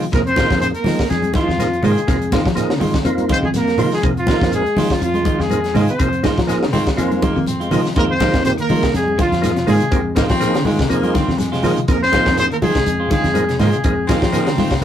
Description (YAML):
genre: afrobeat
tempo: 122 BPM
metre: 4/4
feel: swing 54% on 16ths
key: F minor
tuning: A4 = 440 Hz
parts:
  - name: electric guitar at the edge of break-up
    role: arpeggios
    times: 0.0-14.8 s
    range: C3 to F3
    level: -27 LUFS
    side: equal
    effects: phaser
  - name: clean electric guitar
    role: stabs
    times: 0.0-14.7 s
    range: Eb3 to F4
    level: -23 LUFS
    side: right 1 dB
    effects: warbly pitch drift
  - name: fingered electric bass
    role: bass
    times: 0.0-14.8 s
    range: F2 to F3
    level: -21 LUFS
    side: equal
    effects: none
  - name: shekere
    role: percussion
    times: 0.0-14.8 s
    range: none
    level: -30 LUFS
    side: right 3 dB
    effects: none
  - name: warm trumpet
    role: melody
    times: 0.1-14.3 s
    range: F4 to C5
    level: -21 LUFS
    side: left 1 dB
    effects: none
  - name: trombone with bucket mute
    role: second line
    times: 0.1-14.3 s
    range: F3 to C4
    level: -23 LUFS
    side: right 1 dB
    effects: none
  - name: percussive tonewheel organ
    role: accompaniment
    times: 0.1-14.8 s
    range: F3 to Bb4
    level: -23 LUFS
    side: right 1 dB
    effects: slow rotary speaker, chorus vibrato
  - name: tight funk drum kit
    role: drums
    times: 0.1-14.8 s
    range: hi-hat, kick drum, snare drum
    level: -22 LUFS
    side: left 1 dB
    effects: none
  - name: congas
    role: percussion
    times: 0.1-14.8 s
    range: none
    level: -24 LUFS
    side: left 1 dB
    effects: none
  - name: raspy baritone saxophone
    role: second line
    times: 6.5-14.8 s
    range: Ab3 to C4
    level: -26 LUFS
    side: left 1 dB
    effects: none
room: moderate small room reverb, RT60 0.5 s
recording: rough rehearsal-room recording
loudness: -14 LUFS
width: side -10 dB against mid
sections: 0.0-8.0 A section; 8.0-14.8 A section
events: none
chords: 0.0 Fm7